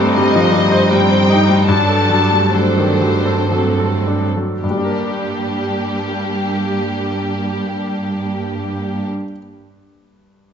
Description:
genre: classical, romantic movement for piano and orchestra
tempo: 50-84 BPM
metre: 3/4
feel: rubato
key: G minor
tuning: A4 = 440 Hz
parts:
  - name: bright grand piano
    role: melody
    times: 0.0-10.5 s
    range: G2 to D5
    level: -18 LUFS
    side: left 2 dB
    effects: none
  - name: warm symphonic violin section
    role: melody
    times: 0.0-9.1 s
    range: G4 to A5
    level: -21 LUFS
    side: left 4 dB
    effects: none
  - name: warm studio violin section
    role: second line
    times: 0.0-9.1 s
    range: C4 to C5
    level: -24 LUFS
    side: equal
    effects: none
  - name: warm symphonic viola section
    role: accompaniment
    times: 0.0-9.1 s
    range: F#3 to Eb4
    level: -21 LUFS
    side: right 3 dB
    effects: none
  - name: rich symphonic cello section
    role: bass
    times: 0.0-9.1 s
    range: G2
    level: -21 LUFS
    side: right 3 dB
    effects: none
room: wet recital hall reverb, RT60 1.5 s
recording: nothing above 7.7 kHz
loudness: -14 LUFS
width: side -7 dB against mid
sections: 0.0-4.6 A section; 4.6-10.5 B section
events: slowing down 0.0-4.6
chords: 0.0 Cm/G; 1.7 D7/G; 4.6 Gm

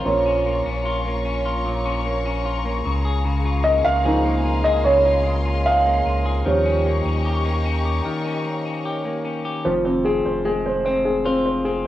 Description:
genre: pop ballad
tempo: 75 BPM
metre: 4/4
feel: straight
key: F minor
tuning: A4 = 443 Hz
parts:
  - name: warm baby grand piano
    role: accompaniment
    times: 0.0-11.9 s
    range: F3 to F5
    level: -21 LUFS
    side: right 1 dB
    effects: cassette tape
  - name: warm symphonic string section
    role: sustained chords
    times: 0.0-9.6 s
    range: F4 to Db6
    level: -29 LUFS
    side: left 2 dB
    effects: cassette tape
  - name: clean electric guitar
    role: arpeggios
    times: 0.0-11.9 s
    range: F2 to Ab4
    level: -26 LUFS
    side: left 3 dB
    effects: cassette tape, tape echo
  - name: saturated sub bass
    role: bass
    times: 0.0-11.9 s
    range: F1 to Eb2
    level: -24 LUFS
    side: equal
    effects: tube saturation
room: moderate small room ambience, RT60 0.5 s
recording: home recording on cassette, small room ambience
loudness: -18 LUFS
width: side -13 dB against mid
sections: 0.0-9.7 A section; 9.7-11.9 B section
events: grand piano solo 0.0-9.7; break 8.1-9.7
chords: 0.1 Bbm; 2.9 Db6; 6.5 Eb7; 9.7 Fm

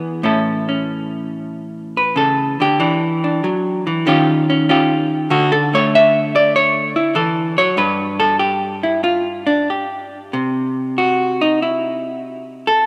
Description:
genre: solo jazz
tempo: 95 BPM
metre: 4/4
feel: swing 69% on 8ths, rubato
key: unclear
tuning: A4 = 439 Hz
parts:
  - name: vintage hollow-body jazz guitar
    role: solo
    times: 0.0-12.9 s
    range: G2 to E5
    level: -17 LUFS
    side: equal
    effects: none
room: moderate lush hall reverb, RT60 3.1 s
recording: rough home demo mix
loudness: -17 LUFS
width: mono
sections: 0.2-12.9 A section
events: hollow-body jazz guitar solo 0.2-12.9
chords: 0.2 A; 2.8 Em7; 4.1 D#9; 5.3 Dadd9; 7.8 N.C.

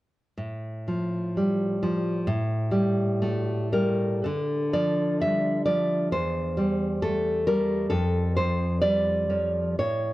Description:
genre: romantic piece for solo classical guitar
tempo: 55-68 BPM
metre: 2/4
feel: rubato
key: unclear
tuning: A4 = 440 Hz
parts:
  - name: nylon-string guitar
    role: solo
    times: 0.4-10.1 s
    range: E2 to E5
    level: -23 LUFS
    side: equal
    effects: analog delay
room: moderate studio reverb, RT60 0.5 s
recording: dark, warm production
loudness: -23 LUFS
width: side -17 dB against mid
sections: 0.4-4.3 A section; 4.3-10.1 B section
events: none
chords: 0.4 Fadd9/A; 2.3 Gmadd9/A; 4.3 Dm; 6.1 C/E; 7.9 F69

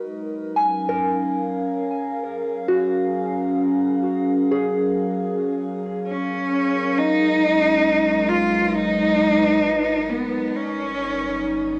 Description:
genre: ambient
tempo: 67 BPM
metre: 4/4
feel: straight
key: G# dorian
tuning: A4 = 441 Hz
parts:
  - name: warbly tape-like pad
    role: sustained chords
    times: 0.0-11.8 s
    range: F#3 to E#5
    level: -26 LUFS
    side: equal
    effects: chorus, built-in reverb, cassette tape, shimmer reverb
  - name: soft synth bell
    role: arpeggios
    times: 0.6-7.0 s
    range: F#4 to G#5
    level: -27 LUFS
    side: equal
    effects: chorus, cassette tape, shimmer reverb, analog delay
  - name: rich cello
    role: melody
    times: 6.1-11.8 s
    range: B3 to E#4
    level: -22 LUFS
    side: equal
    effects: cassette tape, shimmer reverb, analog delay
  - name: warm sub bass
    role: bass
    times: 7.0-11.8 s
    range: G1 to G#1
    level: -47 LUFS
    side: equal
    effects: none
room: wet studio reverb, RT60 0.6 s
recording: home recording on cassette, nothing above 10.6 kHz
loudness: -21 LUFS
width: mono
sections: 0.0-7.0 A section; 7.0-11.8 B section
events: fade-in on sub bass 7.0-11.8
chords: 0.0 F#maj9; 7.0 G#m9; 10.5 D#7/G

